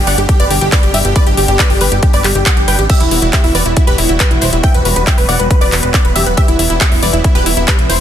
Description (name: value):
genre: uplifting trance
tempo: 138 BPM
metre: 4/4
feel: straight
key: E minor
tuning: A4 = 440 Hz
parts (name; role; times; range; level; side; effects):
- supersaw stab; melody; 0.0-8.0 s; E4 to G5; -17 LUFS; equal; sidechain pumping, digital delay
- wide unison pluck; second line; 0.0-8.0 s; E4 to G5; -20 LUFS; right 1 dB; sidechain pumping, digital delay
- lush unison pad; sustained chords; 0.0-8.0 s; B2 to G4; -21 LUFS; equal; chorus, sidechain pumping
- plucky analog bass; bass; 0.0-8.0 s; E1 to A1; -16 LUFS; equal; sidechain pumping
- big-room dance drum kit; drums; 0.1-8.0 s; crash cymbal, handclaps, hi-hat; -17 LUFS; left 2 dB; none
- electronic kick drum; drums; 0.3-7.8 s; none; -11 LUFS; equal; none
room: little or no reverb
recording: dense, heavily limited modern master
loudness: -9 LUFS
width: side -10 dB against mid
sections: 0.0-8.0 A section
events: none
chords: 0.0 G; 2.9 Emadd9